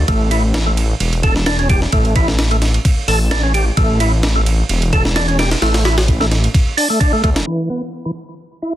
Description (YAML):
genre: breakbeat, breaks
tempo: 130 BPM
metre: 4/4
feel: swing 54% on 16ths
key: unclear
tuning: A4 = 440 Hz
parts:
  - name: detuned saw bass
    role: bass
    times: 0.0-7.4 s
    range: E1 to D2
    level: -16 LUFS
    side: equal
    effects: none
  - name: percussive tonewheel organ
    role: riff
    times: 0.1-8.7 s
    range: E3 to A4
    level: -19 LUFS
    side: right 1 dB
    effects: overdrive, chorus vibrato, stopped rotary speaker, vintage 12-bit sampler grit, low-pass filter, digital delay
  - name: breakbeat sampler-style drum kit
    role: drums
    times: 0.1-7.5 s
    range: hi-hat, kick drum, ride cymbal, snare drum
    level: -17 LUFS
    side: equal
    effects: none
room: little or no reverb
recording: dense, heavily limited modern master, vinyl crackle, low-pass filter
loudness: -13 LUFS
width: side -12 dB against mid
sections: 0.0-7.5 A section; 7.5-8.8 B section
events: filter sweep 7.5-8.8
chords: 0.1 Asus4; 7.5 E5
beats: | 0.08 0.54 1.00 1.47 | 1.93 2.39 2.85 3.31 | 3.77 4.24 4.70 5.16 | 5.62 6.08 6.54 7.00 | 7.47 7.93 8.39